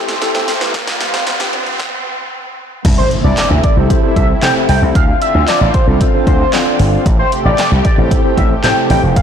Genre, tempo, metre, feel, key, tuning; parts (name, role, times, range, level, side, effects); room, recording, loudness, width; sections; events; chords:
dance-pop; 114 BPM; 4/4; straight; C major; A4 = 440 Hz
mellow tine electric piano; accompaniment; 0.0-9.2 s; C4 to D5; -18 LUFS; left 1 dB; medium stereo tremolo, sidechain pumping
lush unison pad; sustained chords; 0.0-9.2 s; C3 to C5; -21 LUFS; right 1 dB; chorus, sidechain pumping
mallet-like synth pluck; arpeggios; 0.0-1.8 s; G2 to C4; -31 LUFS; right 5 dB
riser and impact; sound effects; 0.0-5.0 s; -22 LUFS; right 1 dB
punchy analog drum machine; drums; 0.1-9.2 s; crash cymbal, handclaps, hi-hat, kick drum, snare drum; -15 LUFS; equal
slap bass with an envelope filter; bass; 2.8-9.2 s; F1 to C3; -14 LUFS; equal; sidechain pumping
octave-doubled lead; melody; 3.0-9.2 s; C5 to G5; -17 LUFS; left 1 dB; chorus, phaser, sidechain pumping, digital delay
light reverb; blown-out, overdriven recording, overdrive, high-pass filter; -11 LUFS; side -8 dB against mid
0.0-2.8 A section; 2.8-9.2 B section
build-up 0.0-2.8; drum fill 0.0-1.8; riser 0.0-2.8; stop 1.8-2.8; drop 2.8-9.2; impact 2.8-5.0
0.0 Am7; 0.7 G7sus4; 2.8 C6; 5.0 Dm7; 7.1 Am7